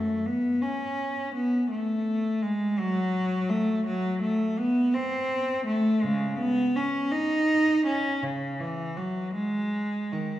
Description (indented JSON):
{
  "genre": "classical, baroque-style suite movement for unaccompanied cello",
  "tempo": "55 BPM (dotted quarters)",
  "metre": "6/8",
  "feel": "rubato",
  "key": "C# minor from 3.9 s",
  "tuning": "A4 = 440 Hz",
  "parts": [
    { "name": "rich cello", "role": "solo", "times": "0.0-10.4 s", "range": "C#3 to D#4", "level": "-24 LUFS", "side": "equal", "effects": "none" }
  ],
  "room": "wet recital hall reverb, RT60 1.8 s",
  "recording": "heard from further back in the room",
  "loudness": "-24 LUFS",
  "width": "side -13 dB against mid",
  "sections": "0.0-10.4 A section",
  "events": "none",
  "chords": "none"
}